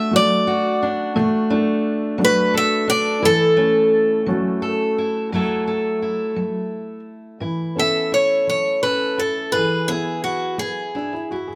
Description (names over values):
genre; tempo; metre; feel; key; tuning
acoustic folk-pop ballad; 57 BPM (dotted quarters); 6/8; straight; F# minor; A4 = 440 Hz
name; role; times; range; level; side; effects
picked steel-string acoustic guitar; melody; 0.0-4.6, 7.8-11.3 s; F#4 to E5; -21 LUFS; equal; plate reverb
fingerpicked steel-string acoustic guitar; accompaniment; 0.0-11.6 s; F#2 to A4; -26 LUFS; equal; none
felt-muted upright piano; arpeggios; 0.0-11.6 s; E3 to A4; -26 LUFS; equal; none
room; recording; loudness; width
moderate small room reverb, RT60 0.5 s; none; -20 LUFS; mono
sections
0.0-5.3 A section; 5.3-7.4 B section; 7.4-11.6 C section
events
none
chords
0.0 D/F#; 1.2 Bm7; 3.2 F#m7; 7.4 Aadd9; 9.5 E